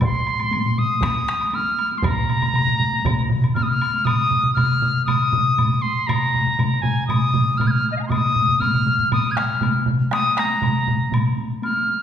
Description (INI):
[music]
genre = japanese traditional, taiko drum ensemble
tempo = 119 BPM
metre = 4/4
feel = straight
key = Bb suspended pentatonic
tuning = A4 = 439 Hz
[part]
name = bright wooden piccolo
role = melody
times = 0.0-12.0 s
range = Eb5 to Ab6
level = -20 LUFS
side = left 1 dB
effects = none
[part]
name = taiko ensemble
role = percussion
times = 0.0-12.0 s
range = none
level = -29 LUFS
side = left 1 dB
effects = none
[part]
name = taiko ensemble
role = percussion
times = 0.0-11.2 s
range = none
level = -24 LUFS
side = left 1 dB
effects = none
[part]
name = taiko ensemble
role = percussion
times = 0.0-3.2 s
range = none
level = -26 LUFS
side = right 1 dB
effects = none
[part]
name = woodblock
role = percussion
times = 0.0-11.7 s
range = none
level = -34 LUFS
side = right 1 dB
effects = none
[part]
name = solo taiko drums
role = percussion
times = 2.0-11.2 s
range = none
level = -23 LUFS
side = right 2 dB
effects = none
[sound]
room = wet recital hall reverb, RT60 1.5 s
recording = recorded in a church or concert hall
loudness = -17 LUFS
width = side -9 dB against mid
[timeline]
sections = 0.0-4.1 A section; 4.1-12.0 B section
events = none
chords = none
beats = | 0.02 0.53 1.03 1.54 | 2.04 2.55 3.06 3.56 | 4.07 4.57 5.08 5.58 | 6.09 6.59 7.10 7.60 | 8.11 8.61 9.11 9.62 | 10.12 10.62 11.13 11.63